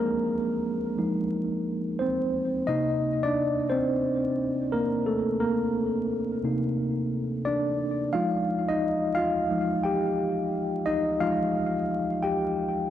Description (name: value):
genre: hip hop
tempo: 88 BPM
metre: 4/4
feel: swing 64% on 16ths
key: F dorian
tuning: A4 = 440 Hz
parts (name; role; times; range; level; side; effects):
- tine electric piano; solo; 0.0-12.9 s; C3 to G5; -24 LUFS; equal; medium stereo tremolo, cassette tape, ping-pong delay
room: wet plate reverb, RT60 3.5 s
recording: dreamy mix soaked in reverb, vinyl crackle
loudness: -24 LUFS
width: side -11 dB against mid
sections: 0.0-12.9 A section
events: tine electric piano solo 0.0-12.9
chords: 0.0 Fm7; 2.7 Cm9; 8.1 Fm9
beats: 0.63 1.31 2.00 | 2.68 3.36 4.04 4.72 | 5.41 6.09 6.77 7.45 | 8.13 8.81 9.50 10.18 | 10.86 11.54 12.22